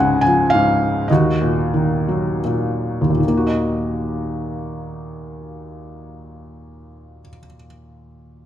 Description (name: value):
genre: classical, lyrical solo piano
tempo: 72-116 BPM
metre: 3/4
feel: rubato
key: Eb minor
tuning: A4 = 440 Hz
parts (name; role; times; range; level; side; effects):
- felt-muted upright piano; solo; 0.0-8.5 s; Db2 to Ab5; -17 LUFS; equal; none
room: wet recital hall reverb, RT60 1.3 s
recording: none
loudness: -16 LUFS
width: side -11 dB against mid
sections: 0.0-3.2 A section; 3.2-8.0 B section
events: slowing down 0.0-3.2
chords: 0.0 Db; 1.1 Ebm